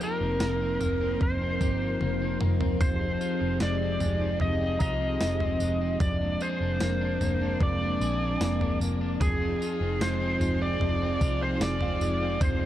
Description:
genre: dream pop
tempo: 75 BPM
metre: 4/4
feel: straight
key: F dorian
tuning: A4 = 443 Hz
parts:
  - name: overdriven slide guitar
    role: melody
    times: 0.0-12.7 s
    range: Ab4 to Eb5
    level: -31 LUFS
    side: equal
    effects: digital delay
  - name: string machine, violas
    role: sustained chords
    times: 0.0-12.7 s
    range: F3 to Bb4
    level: -33 LUFS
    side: equal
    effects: ensemble chorus
  - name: electric guitar at the edge of break-up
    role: arpeggios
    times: 0.0-12.7 s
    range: F2 to Ab4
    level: -32 LUFS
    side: equal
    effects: lush chorus, digital delay
  - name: crisp 8-bit digital drum machine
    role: drums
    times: 0.0-12.6 s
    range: kick drum, snare drum, tambourine, toms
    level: -30 LUFS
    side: equal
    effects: overdrive
  - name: vintage muted picked electric bass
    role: bass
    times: 0.2-12.7 s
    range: F1 to C2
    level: -30 LUFS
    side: equal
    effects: none
  - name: small celesta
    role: texture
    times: 4.8-12.7 s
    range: F5 to Bb5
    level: -49 LUFS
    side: right 5 dB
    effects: none
room: little or no reverb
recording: dark, warm production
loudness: -25 LUFS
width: side -12 dB against mid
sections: 0.0-12.7 A section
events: drum fill 2.0-2.8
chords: 0.0 Cm7/F; 2.8 Fm7; 6.0 Bb7/F; 9.2 Fm7

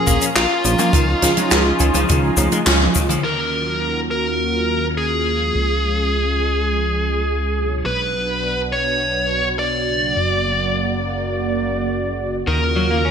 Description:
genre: synthwave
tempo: 104 BPM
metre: 4/4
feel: straight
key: unclear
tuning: A4 = 440 Hz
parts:
  - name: dark smooth lead guitar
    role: melody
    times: 0.0-13.1 s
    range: E#4 to D5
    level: -20 LUFS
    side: equal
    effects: overdrive, ping-pong delay
  - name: soft synth bell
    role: second line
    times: 0.0-3.1 s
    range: E#5 to G#5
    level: -28 LUFS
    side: left 2 dB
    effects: chorus, phaser, digital delay
  - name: lush unison pad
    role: sustained chords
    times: 0.0-13.1 s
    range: C#3 to A#4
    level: -25 LUFS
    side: right 1 dB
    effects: chorus, phaser, sidechain pumping
  - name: mellow synth brass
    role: stabs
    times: 0.0-13.1 s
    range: A#2 to D5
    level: -28 LUFS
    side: right 2 dB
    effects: chorus, digital delay
  - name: electric guitar at the edge of break-up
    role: arpeggios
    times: 0.1-3.2, 12.5-13.1 s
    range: D#3 to E#4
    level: -24 LUFS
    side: left 3 dB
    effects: vintage 12-bit sampler grit, digital delay
  - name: chorused synth bass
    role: bass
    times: 0.1-13.1 s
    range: F#1 to D#2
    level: -23 LUFS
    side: equal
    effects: none
  - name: compact cocktail drum kit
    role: drums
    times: 0.1-3.4 s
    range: crash cymbal, handclaps, hi-hat, shaker, snare drum, toms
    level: -19 LUFS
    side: equal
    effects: low-pass filter on hats, low-pass filter on toms, low-pass filter on cymbals, low-pass filter on snare, low-pass filter on perc, low-pass filter on room, gated reverb
  - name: kick drum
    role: drums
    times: 0.1-3.1 s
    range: none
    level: -20 LUFS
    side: equal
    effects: none
room: moderate lush hall reverb, RT60 1.6 s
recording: bright 1980s-style digital production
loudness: -16 LUFS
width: side -7 dB against mid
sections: 0.0-3.2 A section; 3.2-13.1 B section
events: drum fill 2.4-3.2; band accent 2.7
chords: 0.0 A#m; 0.9 C#add9; 3.2 D#m7; 5.6 C#; 7.9 Bm; 10.2 F#; 12.5 D#m7

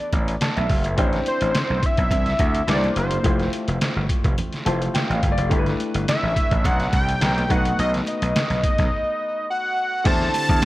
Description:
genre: polished 1980s jazz-funk pop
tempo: 106 BPM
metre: 4/4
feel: swing 54% on 16ths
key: unclear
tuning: A4 = 440 Hz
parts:
  - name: fat analog lead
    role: melody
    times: 0.0-10.7 s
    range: C5 to A5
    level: -24 LUFS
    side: equal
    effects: none
  - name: clear concert grand piano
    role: accompaniment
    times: 0.0-10.7 s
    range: A3 to A5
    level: -27 LUFS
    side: left 2 dB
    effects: wide subtle chorus
  - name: gritty slap bass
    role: bass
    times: 0.1-10.6 s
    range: F1 to E2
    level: -23 LUFS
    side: equal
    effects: overdrive
  - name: trip hop sampler-style drum kit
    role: drums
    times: 0.1-10.7 s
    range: crash cymbal, hi-hat, kick drum, snare drum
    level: -23 LUFS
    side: equal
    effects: gated reverb
  - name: congas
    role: percussion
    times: 0.1-10.7 s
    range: none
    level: -34 LUFS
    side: right 2 dB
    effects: none
  - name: soft string machine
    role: sustained chords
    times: 10.3-10.7 s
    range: D3 to G4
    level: -30 LUFS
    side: right 1 dB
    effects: ensemble chorus
room: light reverb, digital ambience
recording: none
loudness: -19 LUFS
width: side -17 dB against mid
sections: 0.0-10.1 A section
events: grand piano fill 0.1-1.0, 4.4-5.5; break 8.9-10.1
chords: 0.0 Em11; 1.0 Am11; 2.7 C9; 3.2 Fmaj9; 5.5 G6; 7.5 B7; 10.1 D7sus4/E

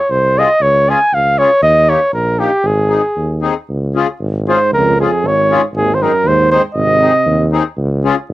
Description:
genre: alpine folk, alpine dance band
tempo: 117 BPM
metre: 2/4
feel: rubato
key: Ab major, Db major from 3.7 s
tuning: A4 = 441 Hz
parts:
  - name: clear flugelhorn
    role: melody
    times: 0.0-7.5 s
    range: G4 to Ab5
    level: -12 LUFS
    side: equal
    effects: cassette tape
  - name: warm tuba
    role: bass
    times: 0.1-8.3 s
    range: Ab1 to Eb2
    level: -17 LUFS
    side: equal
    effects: none
  - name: accordion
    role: accompaniment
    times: 0.4-8.2 s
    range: Bb3 to Ab4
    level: -17 LUFS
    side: left 6 dB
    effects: light tremolo tuning, cassette tape
  - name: dark euphonium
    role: second line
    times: 4.5-7.5 s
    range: Eb2 to C3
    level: -20 LUFS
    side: right 7 dB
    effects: cassette tape
room: light reverb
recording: home recording on cassette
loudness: -11 LUFS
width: side -16 dB against mid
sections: 0.0-3.7 A section; 3.7-8.3 B section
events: none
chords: 0.0 Fm; 0.6 Db; 1.6 Eb; 2.6 Ab; 3.7 Db; 5.7 Ab; 7.8 Db

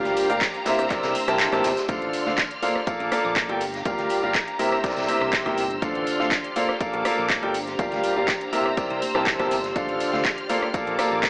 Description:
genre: piano house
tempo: 122 BPM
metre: 4/4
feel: straight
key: D minor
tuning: A4 = 439 Hz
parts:
  - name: clear studio string section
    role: sustained chords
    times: 0.0-11.3 s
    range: Bb3 to F6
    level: -30 LUFS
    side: equal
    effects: sidechain pumping
  - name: bright baby grand piano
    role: riff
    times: 0.0-11.3 s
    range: C3 to A5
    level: -23 LUFS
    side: equal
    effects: sidechain pumping, dub echo
  - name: snare drum and tambourine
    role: drums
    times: 0.0-11.3 s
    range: none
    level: -37 LUFS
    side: equal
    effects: none
  - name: granular cloud pad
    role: texture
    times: 0.0-11.3 s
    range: D4 to F5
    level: -34 LUFS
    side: equal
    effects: none
  - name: fingered electric bass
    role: bass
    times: 0.1-11.3 s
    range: G1 to D2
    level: -35 LUFS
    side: equal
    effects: sidechain pumping
  - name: house drum kit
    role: drums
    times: 0.1-11.3 s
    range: handclaps, hi-hat, ride cymbal, rim click, shaker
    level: -26 LUFS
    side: equal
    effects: overdrive
  - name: tambourine and congas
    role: percussion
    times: 0.1-11.3 s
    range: none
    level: -38 LUFS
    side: equal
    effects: none
  - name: electronic kick drum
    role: drums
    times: 0.4-11.3 s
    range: none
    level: -29 LUFS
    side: equal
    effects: none
room: moderate plate reverb, RT60 1.3 s, small room reverb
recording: AM radio sound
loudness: -21 LUFS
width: side -38 dB against mid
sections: 0.0-1.9 A section; 1.9-11.3 B section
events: drop 0.0-1.9; kick drops out 1.4-1.9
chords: 0.0 Gm7; 0.7 C7; 1.9 Dm7; 2.9 Bbmaj7; 3.6 Gm7; 4.6 C7; 5.8 Dm7; 6.8 Bbmaj7; 7.5 Gm7; 8.5 C7; 9.8 Dm7; 10.7 Bbmaj7

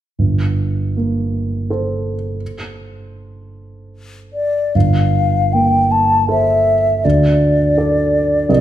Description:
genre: classical, impressionist duo for flute and grand piano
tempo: 79 BPM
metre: 3/4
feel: uneven beats, rubato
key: G dorian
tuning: A4 = 441 Hz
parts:
  - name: warm grand piano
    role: accompaniment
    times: 0.2-8.6 s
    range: G1 to Eb5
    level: -16 LUFS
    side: right 2 dB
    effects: none
  - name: mellow hollow concert flute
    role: melody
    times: 4.3-8.6 s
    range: D5 to A5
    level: -15 LUFS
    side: left 2 dB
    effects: none
room: wet recital hall reverb, RT60 1.6 s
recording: minimal, uncompressed stereo recording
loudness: -13 LUFS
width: side -12 dB against mid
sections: 0.2-4.7 A section; 4.7-8.6 B section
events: none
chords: 0.2 Gmadd9; 7.0 D5

